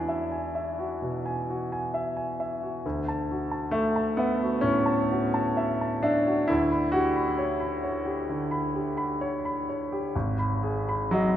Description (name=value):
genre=classical, impressionist solo piano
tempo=60-68 BPM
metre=4/4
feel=rubato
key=unclear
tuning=A4 = 443 Hz
part: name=warm concert grand piano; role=solo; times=0.0-11.4 s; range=Ab1 to B5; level=-25 LUFS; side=equal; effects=none
room=wet cathedral reverb, RT60 5.9 s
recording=recorded in a church or concert hall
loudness=-25 LUFS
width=side -11 dB against mid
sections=0.0-11.4 A section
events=none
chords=0.0 Eadd9; 2.8 Dmaj9; 6.5 Gmaj7#11/D; 10.1 Abm